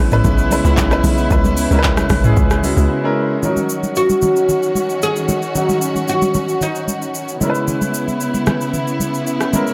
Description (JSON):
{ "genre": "amapiano", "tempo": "113 BPM", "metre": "4/4", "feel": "straight", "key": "Eb phrygian", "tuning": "A4 = 444 Hz", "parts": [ { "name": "warm baby grand piano", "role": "accompaniment", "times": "0.0-9.7 s", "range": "F3 to Cb5", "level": "-24 LUFS", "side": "equal", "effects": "none" }, { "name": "warm studio string section", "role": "sustained chords", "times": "0.0-9.7 s", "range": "Db3 to Gb4", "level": "-24 LUFS", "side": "equal", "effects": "sidechain pumping" }, { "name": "tight log drum bass", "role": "bass", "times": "0.0-2.9 s", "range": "Bb1 to Db2", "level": "-19 LUFS", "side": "equal", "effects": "none" }, { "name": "afro-pop drum kit", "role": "drums", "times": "0.1-9.7 s", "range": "handclaps, hi-hat, kick drum, rim click, shaker, toms", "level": "-22 LUFS", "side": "equal", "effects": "none" }, { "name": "congas", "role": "percussion", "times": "0.2-9.7 s", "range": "none", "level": "-25 LUFS", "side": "equal", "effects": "none" }, { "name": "oud", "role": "melody", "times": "4.0-7.4 s", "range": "Eb4 to Ab4", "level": "-20 LUFS", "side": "equal", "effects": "digital delay" } ], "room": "studio ambience", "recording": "none", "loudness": "-17 LUFS", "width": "mono", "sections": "0.0-3.4 A section; 3.4-9.7 B section", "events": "break 2.9-3.4", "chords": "0.0 Dbm7; 3.4 Ebm7; 7.4 Dbm7", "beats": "0.24 0.77 | 1.30 1.84 2.37 2.90 | 3.43 3.96 4.49 5.02 | 5.55 6.08 6.61 7.14 | 7.68 8.21 8.74 9.27" }